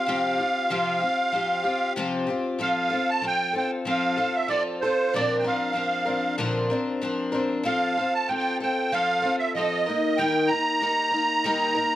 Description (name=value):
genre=rock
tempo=95 BPM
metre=4/4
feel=straight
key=F major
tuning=A4 = 442 Hz
part: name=musette accordion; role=melody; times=0.0-12.0 s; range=C5 to Bb5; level=-24 LUFS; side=right 2 dB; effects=plate reverb
part: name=picked twelve-string acoustic guitar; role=accompaniment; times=0.0-12.0 s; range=Bb2 to Bb4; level=-26 LUFS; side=left 2 dB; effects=none
room=moderate large studio reverb, RT60 0.9 s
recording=worn, warbling old tape, cassette tape, warbly pitch drift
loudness=-22 LUFS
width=side -13 dB against mid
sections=0.0-2.6 A section; 2.6-12.0 B section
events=none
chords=0.0 Csus4; 2.6 F; 5.1 Bbadd9; 7.6 F; 9.9 Eb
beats=| 0.08 0.71 1.34 1.97 | 2.60 3.23 3.87 4.50 | 5.13 5.76 6.39 7.02 | 7.65 8.28 8.91 9.54 | 10.17 10.80 11.43